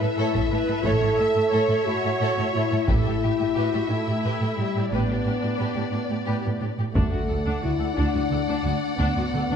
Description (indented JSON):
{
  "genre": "cinematic, epic orchestral film score",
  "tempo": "59 BPM (dotted quarters)",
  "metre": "6/8",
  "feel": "straight",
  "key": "A mixolydian",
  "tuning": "A4 = 439 Hz",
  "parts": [
    { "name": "warm symphonic violin section", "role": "melody", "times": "0.0-9.6 s", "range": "D5 to F#5", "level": "-33 LUFS", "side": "left 6 dB", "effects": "none" },
    { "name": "warm symphonic violin section", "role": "second line", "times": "0.0-9.6 s", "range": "D4 to D5", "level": "-33 LUFS", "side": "left 2 dB", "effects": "none" },
    { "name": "clear studio viola section", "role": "accompaniment", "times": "0.0-9.6 s", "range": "D4 to E5", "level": "-31 LUFS", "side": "equal", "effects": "none" },
    { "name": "dark French horn section", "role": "sustained chords", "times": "0.0-9.6 s", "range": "G3 to A4", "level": "-26 LUFS", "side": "left 2 dB", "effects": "none" },
    { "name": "rich symphonic cello section", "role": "bass", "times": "0.0-9.6 s", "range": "D2 to A2", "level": "-27 LUFS", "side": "right 3 dB", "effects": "none" },
    { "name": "taiko ensemble", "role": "drums", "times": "0.3-8.3 s", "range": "none", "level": "-26 LUFS", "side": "equal", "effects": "none" },
    { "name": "warm symphonic double bass section", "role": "bass", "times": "0.9-9.4 s", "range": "A1 to D2", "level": "-28 LUFS", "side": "right 2 dB", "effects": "none" }
  ],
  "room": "wet scoring stage reverb, RT60 1.7 s",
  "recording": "dark, warm production",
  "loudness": "-21 LUFS",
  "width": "side -7 dB against mid",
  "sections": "0.0-7.0 A section; 7.0-9.6 B section",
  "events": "none",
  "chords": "0.0 A; 2.9 Em/A; 4.9 G/A; 7.0 D"
}